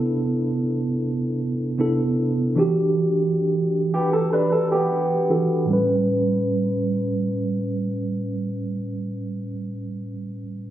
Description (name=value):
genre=R&B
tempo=77 BPM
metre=4/4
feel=straight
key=unclear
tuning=A4 = 440 Hz
part: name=mellow tine electric piano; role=accompaniment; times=0.0-10.7 s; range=A2 to B4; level=-21 LUFS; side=right 1 dB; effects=medium stereo tremolo, low-pass filter
part: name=fingerpicked steel-string acoustic guitar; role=arpeggios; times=3.9-5.7 s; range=B3 to B4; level=-21 LUFS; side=equal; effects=low-pass filter
room=moderate scoring stage reverb, RT60 1.9 s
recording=recorded on a phone in the room, club reverb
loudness=-20 LUFS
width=side -12 dB against mid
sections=0.0-5.7 A section; 5.7-8.8 B section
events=filter sweep 0.0-5.7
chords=0.0 Cmaj13; 2.6 Em9; 5.7 A9